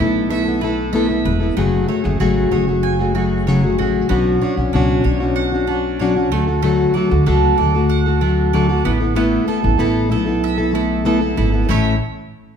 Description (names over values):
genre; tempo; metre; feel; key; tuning
acoustic pop; 95 BPM; 4/4; straight; A major; A4 = 435 Hz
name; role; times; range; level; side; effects
fingerpicked plugged-in steel-string acoustic guitar; accompaniment; 0.0-12.0 s; F#2 to A4; -17 LUFS; left 2 dB; none
bowl-back mandolin; arpeggios; 0.0-12.0 s; A3 to G#5; -24 LUFS; right 9 dB; none
upright bass; bass; 0.0-12.0 s; E1 to D2; -20 LUFS; right 1 dB; none
room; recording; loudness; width
moderate recital hall reverb, RT60 1.4 s; recorded in a church or concert hall; -14 LUFS; side -7 dB against mid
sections
0.0-1.6 A section; 1.6-11.7 B section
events
none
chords
0.0 Asus2; 1.6 F#madd9; 4.1 Bmadd9; 6.3 D; 8.8 Asus2; 11.7 A